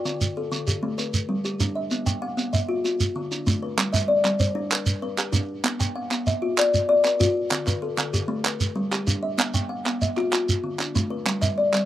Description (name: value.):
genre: southern african traditional, mbira-style interlocking cycle.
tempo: 129 BPM (dotted quarters).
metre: 12/8.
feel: straight.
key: G equiheptatonic.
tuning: A4 = 444 Hz.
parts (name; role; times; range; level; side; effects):
kalimba; arpeggios; 0.0-11.9 s; D3 to G5; -24 LUFS; left 2 dB; none.
shekere; percussion; 0.1-11.9 s; none; -24 LUFS; right 2 dB; none.
group handclap; percussion; 3.8-11.9 s; none; -26 LUFS; right 4 dB; none.
room: little or no reverb.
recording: recorded outdoors, with no room sound.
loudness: -22 LUFS.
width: side -13 dB against mid.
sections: 0.0-3.8 A section; 3.8-11.9 B section.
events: none.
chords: 0.1 D5; 1.0 Gm; 1.9 Bb5; 2.9 Dm; 3.8 Gm; 5.7 Bb; 7.5 D5; 8.5 Gm; 9.4 Bb5; 10.3 Dm; 11.3 Gm.